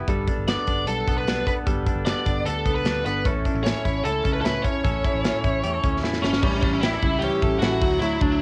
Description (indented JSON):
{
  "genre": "jangly indie pop",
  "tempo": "151 BPM",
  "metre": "4/4",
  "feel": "straight",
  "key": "unclear",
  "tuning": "A4 = 440 Hz",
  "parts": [
    { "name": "direct-recorded clean electric guitar", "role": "arpeggios", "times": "0.0-8.4 s", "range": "F#3 to A4", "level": "-31 LUFS", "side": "equal", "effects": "spring reverb, cassette tape" },
    { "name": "vintage muted fingered electric bass", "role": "bass", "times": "0.0-8.4 s", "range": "G1 to E2", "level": "-32 LUFS", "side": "equal", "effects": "none" },
    { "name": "fingerpicked steel-string acoustic guitar", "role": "accompaniment", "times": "0.1-8.4 s", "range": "A2 to A4", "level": "-32 LUFS", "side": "equal", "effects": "cassette tape" },
    { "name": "modern studio drum kit", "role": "drums", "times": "0.1-8.3 s", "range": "crash cymbal, hi-hat, kick drum, ride cymbal, snare drum", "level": "-27 LUFS", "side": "equal", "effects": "cassette tape" },
    { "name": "biting lead guitar", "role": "melody", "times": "0.5-8.4 s", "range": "C#4 to D5", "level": "-28 LUFS", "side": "equal", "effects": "overdrive, cassette tape" }
  ],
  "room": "light reverb",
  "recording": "home recording on cassette",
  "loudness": "-23 LUFS",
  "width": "mono",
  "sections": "0.0-6.4 A section; 6.4-8.4 B section",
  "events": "drum fill 6.0-6.4",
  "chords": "0.1 Gadd9; 3.3 A; 6.4 A7; 7.8 Dadd9"
}